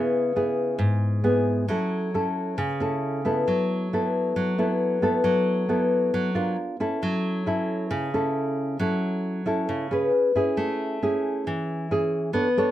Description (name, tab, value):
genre	bossa nova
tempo	135 BPM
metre	4/4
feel	straight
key	A major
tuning	A4 = 440 Hz
part	nylon-string guitar	solo	0.0-12.7 s	G#2 to C#5	-22 LUFS	equal	none
room	moderate studio ambience, RT60 0.5 s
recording	none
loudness	-22 LUFS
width	side -13 dB against mid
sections	0.0-10.6 A section; 10.6-12.7 A section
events	none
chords	0.0 C#m7; 1.7 F#m7; 3.5 D69/F# (rootless); 6.6 Bbmaj7#11; 7.0 F#m7; 10.1 C#m7; 10.6 Amaj7